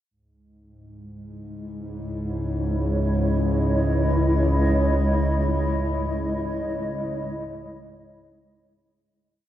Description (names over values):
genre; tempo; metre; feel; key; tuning
dark ambient drone; free time; none; none; C# minor; A4 = 440 Hz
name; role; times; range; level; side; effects
granular cloud pad; sustained chords; 1.6-9.1 s; G#3 to D#5; -26 LUFS; equal; built-in reverb
bowed-like drone; drone; 1.5-9.2 s; C#2 to G#2; -24 LUFS; equal; built-in reverb
room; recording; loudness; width
wet huge ambient reverb, RT60 8.4 s; worn, warbling old tape, cassette tape, warbly pitch drift; -21 LUFS; side -12 dB against mid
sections
0.1-9.1 A section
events
fade-in on ambient pad 0.1-9.1; filter sweep on synth drone 0.1-9.1; fade-out 4.6-9.1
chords
0.1 C#madd9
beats
free time